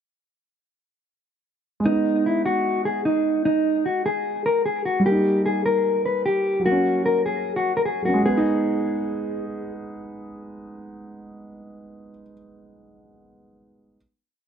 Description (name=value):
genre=hip hop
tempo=150 BPM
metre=4/4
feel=half-time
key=G# minor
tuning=A4 = 440 Hz
part: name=dark concert grand piano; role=accompaniment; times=1.8-14.0 s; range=F#3 to D#4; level=-26 LUFS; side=right 2 dB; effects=none
part: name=mellow electric guitar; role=melody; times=1.9-9.4 s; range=D#4 to B4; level=-21 LUFS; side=left 1 dB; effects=digital delay
room=light reverb, small room ambience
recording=dark, warm production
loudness=-20 LUFS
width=side -8 dB against mid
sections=1.9-8.3 breakdown; 8.3-11.5 final chord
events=none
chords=1.9 G#m; 5.1 D#; 6.7 F#; 8.3 G#m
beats=| 1.86 2.26 2.66 3.06 | 3.46 3.86 4.26 4.66 | 5.06 5.46 5.86 6.26 | 6.66 7.06 7.46 7.86 | 8.26 8.66 9.06 9.46 | 9.86 10.26 10.66 11.06